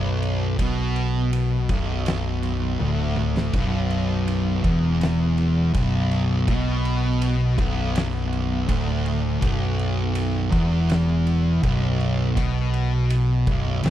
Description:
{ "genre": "stoner and doom metal", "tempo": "82 BPM", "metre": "4/4", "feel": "straight", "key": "B minor", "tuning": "A4 = 441 Hz", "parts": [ { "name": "thick fuzz guitar", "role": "riff", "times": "0.0-13.9 s", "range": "B1 to B2", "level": "-22 LUFS", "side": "equal", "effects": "distortion" }, { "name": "fingered electric bass", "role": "bass", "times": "0.0-13.9 s", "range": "B0 to B1", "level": "-24 LUFS", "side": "equal", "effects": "overdrive" }, { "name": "oversized low-tuned drum kit", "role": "drums", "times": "0.2-13.9 s", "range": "kick drum, ride cymbal, snare drum, toms", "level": "-28 LUFS", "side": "equal", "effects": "none" } ], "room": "little or no reverb", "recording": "dry, close 1970s-style studio recording", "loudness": "-20 LUFS", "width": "side -12 dB against mid", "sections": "0.0-13.9 A section", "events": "drum fill 2.8-3.5", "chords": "0.0 Bm" }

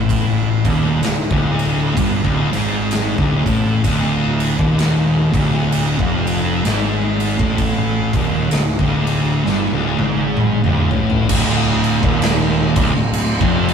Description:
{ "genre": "stoner and doom metal", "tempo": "64 BPM", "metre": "4/4", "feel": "swing 59% on 8ths", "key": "unclear", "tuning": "A4 = 440 Hz", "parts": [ { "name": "thick fuzz guitar", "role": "riff", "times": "0.0-13.7 s", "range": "D2 to A2", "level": "-17 LUFS", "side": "equal", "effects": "distortion" }, { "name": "fuzz fingered electric bass", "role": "bass", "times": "0.0-13.7 s", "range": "D1 to A1", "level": "-22 LUFS", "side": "equal", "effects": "overdrive" }, { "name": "big rock drum kit", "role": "drums", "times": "0.1-13.7 s", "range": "crash cymbal, kick drum, ride cymbal, snare drum, toms", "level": "-20 LUFS", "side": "equal", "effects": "none" } ], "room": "wet booth ambience, RT60 0.3 s", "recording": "rough rehearsal-room recording, tube saturation", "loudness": "-14 LUFS", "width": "side -7 dB against mid", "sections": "0.0-11.3 A section; 11.3-13.7 B section", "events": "drum fill 9.4-11.3", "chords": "0.0 D5; 11.3 Dm" }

